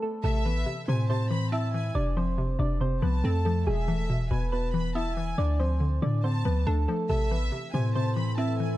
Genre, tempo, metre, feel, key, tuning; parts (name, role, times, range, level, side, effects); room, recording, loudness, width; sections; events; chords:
hip hop; 140 BPM; 4/4; half-time; A harmonic minor; A4 = 440 Hz
soft electric-piano-like synth keys; melody; 0.0-8.8 s; G#3 to E5; -32 LUFS; right 1 dB; chorus
warm studio violin section; second line; 0.2-8.8 s; E5 to B5; -38 LUFS; equal; digital delay
hollow square pluck; accompaniment; 0.2-8.8 s; B2 to D4; -31 LUFS; left 2 dB; chorus
clean 808-style bass; bass; 0.2-8.8 s; E1 to A2; -27 LUFS; equal
deep dark ambient pad; sustained chords; 7.7-8.8 s; E3 to A4; -37 LUFS; left 2 dB; chorus, built-in reverb
digital ambience; dark, warm production; -25 LUFS; side -15 dB against mid
0.2-8.8 A section
break 0.0
0.2 Am; 2.0 F; 3.7 Esus4; 5.4 Dm; 7.1 Am